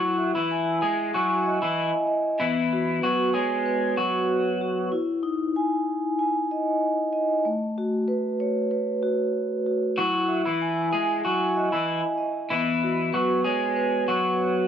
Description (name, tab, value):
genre	hip hop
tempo	95 BPM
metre	4/4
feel	swing 54% on 16ths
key	E major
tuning	A4 = 440 Hz
part	electric guitar at the edge of break-up	melody	0.0-4.9, 10.0-14.7 s	E3 to G#4	-25 LUFS	equal	high-pass filter, low-pass filter, slapback echo
part	vibraphone with soft mallets	accompaniment	0.0-14.7 s	A3 to G#5	-24 LUFS	equal	cassette tape, high-pass filter, low-pass filter
room	moderate spring reverb, RT60 2.5 s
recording	none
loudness	-22 LUFS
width	side -8 dB against mid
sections	0.0-14.7 A section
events	none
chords	0.0 Emaj7; 2.4 E69; 4.9 Emaj7; 7.5 A69; 10.0 Emaj7; 12.5 E69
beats	0.50 1.13 1.77 | 2.40 3.03 3.66 4.29 | 4.92 5.55 6.19 6.82 | 7.45 8.08 8.71 9.35 | 9.98 10.61 11.24 11.87 | 12.50 13.13 13.77 14.40